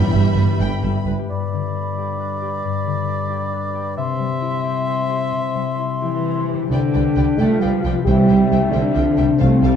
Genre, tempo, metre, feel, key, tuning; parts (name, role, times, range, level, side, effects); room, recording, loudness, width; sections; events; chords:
cinematic; 89 BPM (dotted quarters); 6/8; straight; G major, C major from 6.7 s; A4 = 440 Hz
warm symphonic violin section; melody; 0.0-0.6, 6.7-9.7 s; E5 to G5; -34 LUFS; left 3 dB
warm clarinet; second line; 0.0-9.8 s; G3 to C5; -34 LUFS; left 3 dB
warm symphonic violin section; second line; 0.0-1.1, 6.7-9.7 s; A4 to B5; -32 LUFS; left 2 dB
rich symphonic viola section; accompaniment; 0.0-0.9, 7.4-9.8 s; E3 to A3; -26 LUFS; right 1 dB
dark French horn section; sustained chords; 0.0-0.6, 6.0-9.8 s; E3 to A4; -21 LUFS; left 5 dB
concert harp; arpeggios; 0.0-9.8 s; G2 to B5; -25 LUFS; left 8 dB
timpani; percussion; 0.0-0.6, 8.1-9.8 s; G2 to C3; -21 LUFS; right 1 dB
dark symphonic cello section; bass; 0.1-1.1, 6.0-9.8 s; G2 to A3; -20 LUFS; right 4 dB
rich symphonic double bass section; bass; 0.1-1.1, 6.7-9.7 s; G1 to C2; -22 LUFS; right 4 dB
mellow concert flute; second line; 1.3-9.8 s; E5 to C6; -28 LUFS; left 3 dB
warm oboe; second line; 1.3-6.4 s; D5 to E5; -26 LUFS; right 1 dB
wet recital hall reverb, RT60 1.5 s; dark, warm production; -17 LUFS; side -8 dB against mid
0.0-1.3 A section; 1.3-6.7 B section; 6.7-9.8 C section
0.0 Em/G; 1.3 G; 4.0 C; 6.7 G/C; 8.1 C